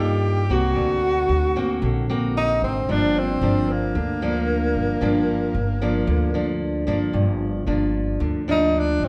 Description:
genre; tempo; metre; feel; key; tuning
bossa nova; 113 BPM; 4/4; straight; G minor; A4 = 445 Hz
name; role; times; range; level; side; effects
warm tenor saxophone; melody; 0.0-9.1 s; Bb3 to G4; -26 LUFS; equal; none
hollow concert flute; second line; 0.0-6.6 s; Bb4 to G5; -37 LUFS; equal; none
nylon-string guitar; accompaniment; 0.0-9.1 s; G2 to F#4; -26 LUFS; equal; none
upright bass; bass; 0.0-9.1 s; G1 to G2; -27 LUFS; equal; none
room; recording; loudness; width
wet large studio reverb, RT60 1.4 s; heard from further back in the room; -22 LUFS; mono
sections
0.0-7.1 A section; 7.1-9.1 B section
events
tenor saxophone solo 7.1-9.1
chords
0.0 Cm7; 0.8 Daug7; 2.9 Gm7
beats
0.23 | 0.76 1.29 1.82 2.35 | 2.89 3.42 3.95 4.48 | 5.01 5.55 6.08 6.61 | 7.14 7.67 8.20 8.74

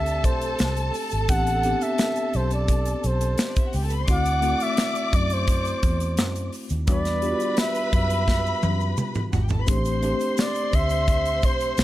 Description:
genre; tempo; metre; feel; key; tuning
lush 1970s-style soul; 86 BPM; 4/4; straight; A dorian; A4 = 441 Hz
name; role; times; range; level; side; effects
breathy flugelhorn; melody; 0.0-11.8 s; C5 to F#5; -27 LUFS; right 1 dB; none
warm studio string section; second line; 0.0-11.8 s; D4 to D6; -30 LUFS; left 1 dB; none
mellow tine electric piano; accompaniment; 0.0-11.8 s; G3 to G4; -30 LUFS; left 3 dB; medium stereo tremolo
vintage muted fingered electric bass; bass; 0.0-11.8 s; G#1 to F#2; -25 LUFS; equal; none
modern studio drum kit; drums; 0.1-11.8 s; hi-hat, kick drum, snare drum, toms; -24 LUFS; equal; none
tube shaker; percussion; 0.1-11.8 s; none; -44 LUFS; right 13 dB; none
room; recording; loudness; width
small room reverb; none; -21 LUFS; side -15 dB against mid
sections
0.0-11.8 A section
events
drum fill 8.3-9.7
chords
0.0 Am11; 4.1 D7; 6.9 Em7; 9.7 Am11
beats
0.59 | 1.29 1.99 2.69 3.39 | 4.09 4.79 5.49 6.19 | 6.89 7.59 8.29 8.99 | 9.69 10.38 11.08 11.78

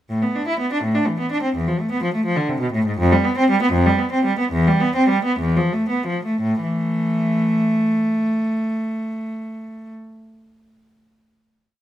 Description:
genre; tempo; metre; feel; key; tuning
classical, baroque-style suite movement for unaccompanied cello; 55-86 BPM (dotted quarters); 6/8; rubato; A minor; A4 = 443 Hz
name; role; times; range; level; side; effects
rich cello; solo; 0.1-9.9 s; E2 to E4; -18 LUFS; equal; none
room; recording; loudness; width
moderate stone room reverb, RT60 1.1 s; none; -17 LUFS; side -12 dB against mid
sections
0.1-6.4 A section; 6.4-10.5 final chord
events
slowing down 2.2-6.4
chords
0.1 A5; 1.5 E; 3.0 Fsus2; 4.5 Em; 5.4 E5; 6.4 A5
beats
| 0.10 0.83 | 1.55 2.25 | 2.98 3.72 | 4.50 5.38 | 6.41 7.43 | 8.45 9.48

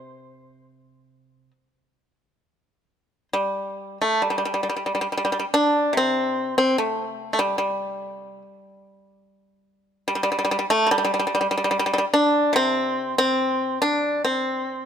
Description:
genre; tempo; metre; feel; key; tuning
chinese traditional, Chinese solo plucked strings; 72 BPM; 4/4; rubato; unclear; A4 = 439 Hz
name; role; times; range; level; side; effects
pipa; solo; 0.0-14.9 s; C3 to C5; -20 LUFS; equal; none
room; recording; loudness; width
light reverb; close, detailed microphones; -20 LUFS; side -8 dB against mid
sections
0.0-4.2 A section; 4.2-14.9 B section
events
none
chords
none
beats
| 0.67 1.51 2.38 3.30 | 4.22 5.09 5.94 6.76 | 7.59 8.42 9.24 10.06 | 10.89 11.71 12.54 13.38 | 14.24

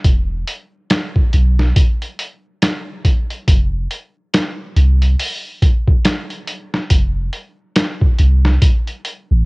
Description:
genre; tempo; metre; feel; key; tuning
trip hop; 70 BPM; 4/4; swing 60% on 16ths; unclear; A4 = 440 Hz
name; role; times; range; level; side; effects
soft 808-style bass; bass; 0.0-9.5 s; E1 to C2; -13 LUFS; equal; none
boom bap sampler-style drum kit; drums; 0.0-9.3 s; hi-hat, kick drum, snare drum; -15 LUFS; equal; cassette tape
room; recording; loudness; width
little or no reverb; home recording on cassette; -14 LUFS; side -31 dB against mid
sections
0.0-9.5 A section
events
none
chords
none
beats
| 0.05 0.91 1.76 2.62 | 3.48 4.33 5.19 6.05 | 6.91 7.76 8.62

